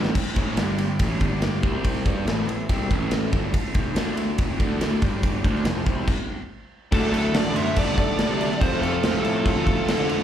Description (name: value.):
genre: classic rock.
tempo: 142 BPM.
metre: 4/4.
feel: straight.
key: unclear.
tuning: A4 = 440 Hz.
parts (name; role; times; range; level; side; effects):
bright tonewheel organ; sustained chords; 0.0-10.2 s; F3 to D5; -38 LUFS; equal; none.
overdriven semi-hollow guitar; riff; 0.0-10.2 s; F2 to G4; -31 LUFS; left 9 dB; none.
overdriven semi-hollow guitar; riff; 0.0-10.2 s; F2 to G4; -31 LUFS; right 8 dB; phaser, slapback echo.
fuzz picked electric bass; bass; 0.0-10.2 s; F1 to D3; -28 LUFS; equal; overdrive.
gated 80s drum kit; drums; 0.0-10.2 s; crash cymbal, kick drum, ride cymbal, snare drum; -24 LUFS; equal; none.
biting lead guitar; melody; 6.9-10.0 s; A4 to E5; -27 LUFS; equal; overdrive, slapback echo, tape echo.
octave-fuzz lead guitar; second line; 6.9-10.0 s; D4 to C5; -34 LUFS; right 3 dB; distortion, tape echo.
distorted electric guitar; riff; 6.9-10.2 s; F2 to D4; -28 LUFS; equal; distortion, slapback echo.
room: light reverb, studio ambience.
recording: live gig heard through the venue's PA, club reverb.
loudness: -20 LUFS.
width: side -10 dB against mid.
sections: 0.2-6.9 A section; 6.9-10.2 B section.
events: drum fill 0.0; stop 6.1-6.9.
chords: 0.2 Am; 0.6 G5; 1.0 A5; 1.2 G5; 1.6 C5; 2.1 Am; 3.8 F5; 4.0 D5; 4.4 F5; 4.6 D5; 5.0 G5; 5.4 F5; 6.3 N.C.; 6.9 D; 8.6 F.